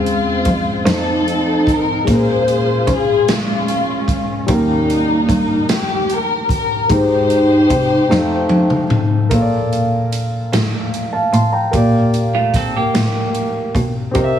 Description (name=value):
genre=slow gospel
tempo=50 BPM (dotted quarters)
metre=6/8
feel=straight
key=Bb major from 9.3 s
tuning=A4 = 436 Hz
part: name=dark studio string section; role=melody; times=0.0-8.9 s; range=G3 to C5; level=-16 LUFS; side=left 1 dB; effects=tape echo
part: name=warm grand piano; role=accompaniment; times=0.0-14.4 s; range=Ab2 to C6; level=-19 LUFS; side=left 1 dB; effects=none
part: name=warm cello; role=bass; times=0.0-14.4 s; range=Db2 to Db3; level=-20 LUFS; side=right 1 dB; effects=none
part: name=swinging big-band drum kit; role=drums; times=0.1-14.3 s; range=hi-hat, kick drum, snare drum, toms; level=-20 LUFS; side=equal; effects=none
part: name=semi-hollow electric guitar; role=second line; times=12.3-13.9 s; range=A3 to A4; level=-19 LUFS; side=right 2 dB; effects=none
room=moderate studio reverb, RT60 0.6 s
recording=heavily compressed radio sound, multiband compression, small room ambience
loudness=-13 LUFS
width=side -9 dB against mid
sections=0.0-9.3 A section; 9.3-14.4 B section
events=drum fill 8.1-9.3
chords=0.0 Dbmaj7; 0.9 F7; 2.1 Bbm7; 4.5 Eb7; 6.9 Abmaj7; 8.1 F7; 9.3 Bbmaj7; 11.7 Gm7/Bb